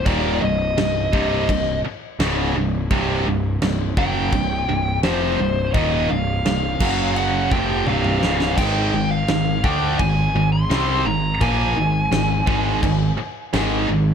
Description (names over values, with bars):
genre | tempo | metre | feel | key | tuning
heavy metal | 85 BPM | 4/4 | straight | C minor | A4 = 441 Hz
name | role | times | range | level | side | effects
bluesy overdriven lead guitar | melody | 0.0-13.8 s | C5 to C6 | -24 LUFS | left 1 dB | distortion
fuzz picked electric bass | bass | 0.0-14.1 s | C1 to D2 | -24 LUFS | equal | overdrive
tight distorted guitar | riff | 0.1-14.1 s | C2 to D4 | -25 LUFS | left 10 dB | distortion
tight distorted guitar | riff | 0.1-14.1 s | C2 to D4 | -23 LUFS | right 10 dB | distortion
big rock drum kit | drums | 0.1-13.7 s | china cymbal, crash cymbal, kick drum, snare drum, toms | -25 LUFS | left 1 dB | none
room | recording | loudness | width
studio ambience | none | -17 LUFS | side -7 dB against mid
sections
0.0-14.1 A section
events
drum fill 7.9-8.6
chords
0.0 Cm; 6.8 F#5; 7.5 C5; 8.6 Ab5